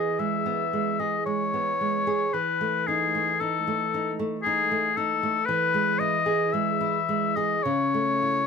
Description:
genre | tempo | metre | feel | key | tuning
romantic duo for oboe and classical guitar | 52-59 BPM | 3/4 | rubato | E major | A4 = 440 Hz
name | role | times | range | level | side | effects
clear oboe | melody | 0.0-8.5 s | G#4 to E5 | -25 LUFS | left 6 dB | none
nylon-string guitar | accompaniment | 0.0-8.5 s | C#3 to G#4 | -28 LUFS | right 3 dB | none
room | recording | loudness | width
light reverb | close, detailed microphones | -23 LUFS | side -6 dB against mid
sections
0.0-8.5 A section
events
none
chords
0.0 E; 2.3 Eadd11; 5.5 E; 7.6 A/C#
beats
0.19 1.27 | 2.35 3.41 4.46 | 5.48 6.53 7.65

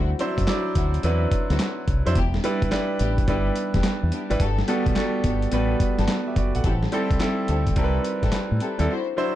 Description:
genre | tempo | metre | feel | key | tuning
R&B, new jack swing | 107 BPM | 4/4 | swing 66% on 16ths | A dorian | A4 = 441 Hz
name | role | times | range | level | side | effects
dark studio string section | stabs | 0.0-9.3 s | B3 to C5 | -32 LUFS | left 5 dB | none
deep dub fingered electric bass | bass | 0.0-8.9 s | E1 to A2 | -24 LUFS | equal | none
clear concert grand piano | accompaniment | 0.2-9.4 s | F#3 to F#5 | -25 LUFS | right 1 dB | none
dusty soul sampler-style drum kit | drums | 0.2-8.9 s | handclaps, hi-hat, kick drum, snare drum | -25 LUFS | equal | overdrive
room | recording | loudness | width
little or no reverb | dark, warm production | -20 LUFS | side -13 dB against mid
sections
0.0-9.4 A section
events
none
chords
0.0 D9; 2.2 Em7; 4.4 Gmaj9; 6.6 Am7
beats
0.47 1.03 1.59 | 2.16 2.72 3.28 3.84 | 4.40 4.96 5.52 6.08 | 6.64 7.20 7.76 8.32 | 8.88

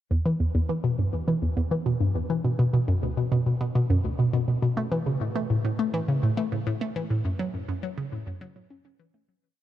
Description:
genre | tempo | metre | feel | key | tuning
ambient | 103 BPM | 4/4 | straight | E dorian | A4 = 440 Hz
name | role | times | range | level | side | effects
hollow square pluck | solo | 0.1-9.3 s | D2 to C#4 | -24 LUFS | equal | chorus, ping-pong delay
room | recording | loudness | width
light reverb | cassette tape | -24 LUFS | side -12 dB against mid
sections
0.1-9.4 A section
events
fade-out 6.3-9.4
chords
none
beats
| 0.11 0.69 1.28 1.86 | 2.44 3.02 3.61 4.19 | 4.77 5.36 5.94 6.52 | 7.10 7.68 8.27 8.85

